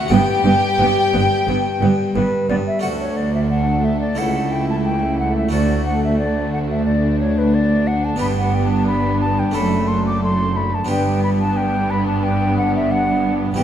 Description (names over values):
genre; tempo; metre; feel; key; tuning
classical, baroque-style concerto movement with solo episodes; 89 BPM; 4/4; straight; D major; A4 = 440 Hz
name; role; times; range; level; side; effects
concert flute; melody; 0.0-13.6 s; B4 to D6; -22 LUFS; left 1 dB; none
rich chamber violin section; melody; 0.0-13.6 s; E4 to G5; -31 LUFS; left 3 dB; none
warm chamber violin section; second line; 0.0-13.6 s; D4 to G4; -24 LUFS; left 4 dB; none
harpsichord; accompaniment; 0.0-13.6 s; C#2 to A4; -26 LUFS; equal; none
warm studio viola section; accompaniment; 0.1-13.6 s; A3 to B3; -24 LUFS; equal; none
rich symphonic cello section; bass; 0.1-13.6 s; C#2 to G2; -22 LUFS; right 2 dB; none
warm chamber double bass section; bass; 0.1-13.6 s; E1 to D2; -23 LUFS; right 2 dB; none
room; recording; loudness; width
wet concert hall reverb, RT60 2.2 s; none; -16 LUFS; side -10 dB against mid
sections
0.0-2.8 A section; 2.8-13.6 B section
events
none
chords
0.1 G; 2.8 D; 4.2 A/C#; 5.5 D; 8.2 G; 9.6 D/F#; 10.9 G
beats
| 0.11 0.79 1.47 2.15 | 2.84 3.51 4.19 4.86 | 5.53 6.20 6.87 7.54 | 8.21 8.88 9.55 10.23 | 10.90 11.57 12.24 12.91 | 13.58